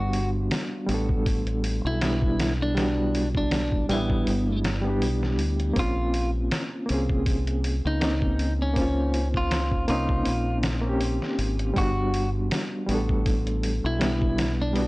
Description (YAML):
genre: trip hop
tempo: 80 BPM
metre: 4/4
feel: swing 55% on 16ths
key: unclear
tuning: A4 = 440 Hz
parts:
  - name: clean electric guitar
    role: melody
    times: 0.0-14.9 s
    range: B3 to F#4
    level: -30 LUFS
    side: equal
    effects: vintage 12-bit sampler grit, dub echo
  - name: bright reed electric piano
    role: accompaniment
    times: 0.0-14.9 s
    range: G3 to B#4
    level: -27 LUFS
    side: equal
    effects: overdrive, fast tremolo, vintage 12-bit sampler grit, tape echo
  - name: deep dub fingered electric bass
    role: bass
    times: 0.0-14.9 s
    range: G1 to D2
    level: -27 LUFS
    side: equal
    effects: tube saturation
  - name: trip hop sampler-style drum kit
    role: drums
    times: 0.1-14.9 s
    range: hi-hat, kick drum, snare drum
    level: -28 LUFS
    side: equal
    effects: vintage 12-bit sampler grit, studio ambience
room: little or no reverb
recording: dry, gritty hardware recording, transformer saturation, cassette tape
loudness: -22 LUFS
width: side -21 dB against mid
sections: 0.0-14.9 A section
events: none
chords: 0.0 Gmaj7; 5.8 A#madd9; 11.8 Gmaj7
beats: 0.52 1.27 2.02 | 2.77 3.52 4.27 5.02 | 5.77 6.52 7.27 8.02 | 8.77 9.52 10.27 11.02 | 11.77 12.52 13.27 14.02 | 14.77